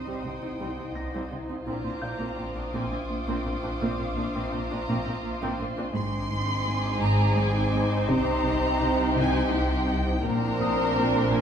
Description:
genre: cinematic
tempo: 84 BPM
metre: 3/4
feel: straight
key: unclear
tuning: A4 = 437 Hz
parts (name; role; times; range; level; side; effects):
- muted chamber violin section; melody; 0.0-11.4 s; Eb5 to C6; -34 LUFS; left 2 dB; none
- muted chamber violin section; second line; 0.0-11.4 s; Eb4 to C5; -32 LUFS; right 2 dB; none
- muted chamber cello section; riff; 0.0-11.4 s; Ab2 to C4; -31 LUFS; equal; none
- swarming drone; drone; 0.0-11.4 s; Ab1 to C2; -35 LUFS; equal; built-in reverb
- muted studio violin section; texture; 0.0-9.9 s; C6 to Eb6; -41 LUFS; left 4 dB; none
- warm grand piano; texture; 0.0-6.0, 10.6-11.4 s; F5 to Bb6; -41 LUFS; left 2 dB; none
- muted chamber viola section; accompaniment; 0.1-11.4 s; G3 to Eb4; -34 LUFS; equal; none
- muted chamber cello section; bass; 0.1-11.4 s; Ab2 to C3; -33 LUFS; right 1 dB; none
- muted studio double bass section; bass; 0.2-11.4 s; Ab1 to C2; -32 LUFS; right 1 dB; none
- mellow French horn section; sustained chords; 1.7-11.4 s; C4 to Eb4; -33 LUFS; left 3 dB; none
room: wet recital hall reverb, RT60 1.5 s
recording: minimal, uncompressed stereo recording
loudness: -24 LUFS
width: side -8 dB against mid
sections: 0.0-11.4 A section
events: none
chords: 0.0 Cm; 1.7 Bbadd9; 6.0 Ab; 8.1 Cm; 10.2 Bbadd9

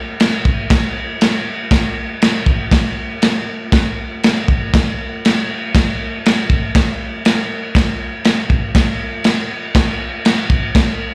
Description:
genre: rock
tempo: 119 BPM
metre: 4/4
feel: straight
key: none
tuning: none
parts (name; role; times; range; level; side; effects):
- crunchy breakbeat drum kit; drums; 0.2-10.9 s; crash cymbal, kick drum, snare drum; -16 LUFS; equal; none
room: light reverb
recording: live gig heard through the venue's PA, club reverb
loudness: -16 LUFS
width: mono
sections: 0.0-11.1 A section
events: none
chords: none

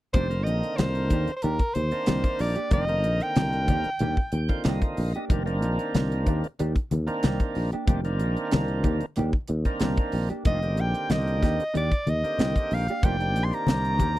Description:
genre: electric jazz fusion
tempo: 93 BPM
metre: 4/4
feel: straight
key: unclear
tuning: A4 = 440 Hz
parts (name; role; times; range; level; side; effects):
- bright soprano saxophone; melody; 0.1-4.5, 10.5-14.2 s; Bb4 to C6; -28 LUFS; equal; slapback echo
- overdriven tonewheel organ; accompaniment; 0.1-14.2 s; D3 to G5; -31 LUFS; right 2 dB; slow rotary speaker
- mellow electric guitar; stabs; 0.1-14.2 s; Eb3 to G4; -33 LUFS; right 2 dB; analog chorus
- sustaining fretless electric bass; bass; 0.1-14.2 s; F1 to Eb2; -26 LUFS; equal; none
- crisp fusion drum kit; drums; 0.1-14.2 s; hi-hat, kick drum, snare drum; -24 LUFS; equal; none
- congas; percussion; 0.2-14.2 s; none; -30 LUFS; left 3 dB; none
room: little or no reverb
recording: dry, close 1970s-style studio recording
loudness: -23 LUFS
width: side -16 dB against mid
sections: 0.1-14.2 A section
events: tonewheel organ fill 4.0-5.3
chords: 0.1 F13sus4

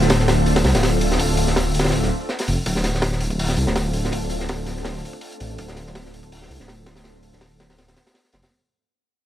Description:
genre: drum and bass, jungle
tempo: 164 BPM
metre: 4/4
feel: swing 54% on 16ths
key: D minor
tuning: A4 = 439 Hz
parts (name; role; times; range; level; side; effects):
- soft string machine; sustained chords; 0.0-7.9 s; A3 to A4; -26 LUFS; equal; ensemble chorus
- dark detuned saw bass; bass; 0.0-8.4 s; D1 to C2; -21 LUFS; equal; none
- crunchy breakbeat drum kit; drums; 0.0-8.5 s; hi-hat, kick drum, snare drum; -23 LUFS; equal; high-pass filter on kick, high-pass filter on hats, high-pass filter on snare, high-pass filter on room
room: studio reverb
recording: vinyl crackle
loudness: -18 LUFS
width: side -12 dB against mid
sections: 0.0-8.5 A section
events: fade-out 0.0-8.5; filter sweep on string machine 0.0-8.5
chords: 0.0 Dm7

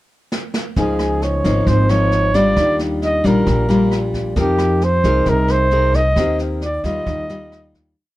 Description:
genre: bossa nova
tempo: 133 BPM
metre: 4/4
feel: straight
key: Eb major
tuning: A4 = 440 Hz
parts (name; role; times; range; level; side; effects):
- jazz brush drum kit; drums; 0.3-7.8 s; kick drum, rim click, snare drum; -25 LUFS; right 1 dB; none
- breathy flugelhorn; melody; 0.8-7.7 s; G4 to Eb5; -18 LUFS; right 1 dB; none
- nylon-string guitar; accompaniment; 0.8-7.9 s; Ab2 to Bb4; -19 LUFS; left 2 dB; none
- upright bass; bass; 0.8-7.9 s; Ab1 to F2; -19 LUFS; equal; none
room: light reverb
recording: dark, warm production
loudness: -14 LUFS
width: side -16 dB against mid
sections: 0.0-0.8 pickup bar; 0.8-8.0 A section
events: drum fill 0.3-0.8; fade-out 6.2-8.0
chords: 0.0 N.C.; 0.8 Db69; 2.6 Ebmaj9; 4.4 Fm11; 6.2 Ebmaj13; 7.1 Ebadd9

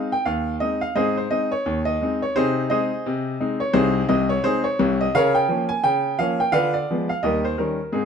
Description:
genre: ragtime piano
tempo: 86 BPM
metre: 2/4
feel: swing 59% on 16ths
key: Ab major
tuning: A4 = 440 Hz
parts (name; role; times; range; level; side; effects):
- clear grand piano; solo; 0.0-8.1 s; C2 to Ab5; -19 LUFS; equal; none
room: moderate echo chamber reverb, RT60 1.4 s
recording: dark, warm production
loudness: -19 LUFS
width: side -7 dB against mid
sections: 0.0-8.1 A section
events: none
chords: 0.0 Ab; 2.4 Ab/C; 5.1 Bbm/Db; 6.5 Ddim7; 7.2 Eb7

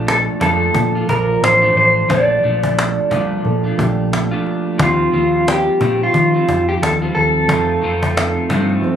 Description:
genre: indie pop, bedroom pop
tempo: 89 BPM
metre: 4/4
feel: swing 60% on 16ths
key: Bb major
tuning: A4 = 439 Hz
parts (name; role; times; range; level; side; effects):
- electric guitar through a small old amp; accompaniment; 0.0-9.0 s; F2 to F4; -24 LUFS; left 2 dB; wide subtle chorus, warbly pitch drift
- reed electric piano; accompaniment; 0.0-9.0 s; F3 to C5; -23 LUFS; right 7 dB; none
- vintage muted fingered electric bass; bass; 0.0-8.8 s; A1 to Eb3; -20 LUFS; left 2 dB; none
- electric guitar through a small old amp; melody; 0.1-9.0 s; F4 to D5; -16 LUFS; equal; wide subtle chorus
- cajon; drums; 0.1-8.9 s; none; -20 LUFS; equal; none
room: light reverb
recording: recorded on a phone in the room, studio ambience, compression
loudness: -13 LUFS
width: side -9 dB against mid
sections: 0.0-9.0 A section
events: none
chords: 0.0 Bbmaj7; 4.8 Eb69; 7.5 F7

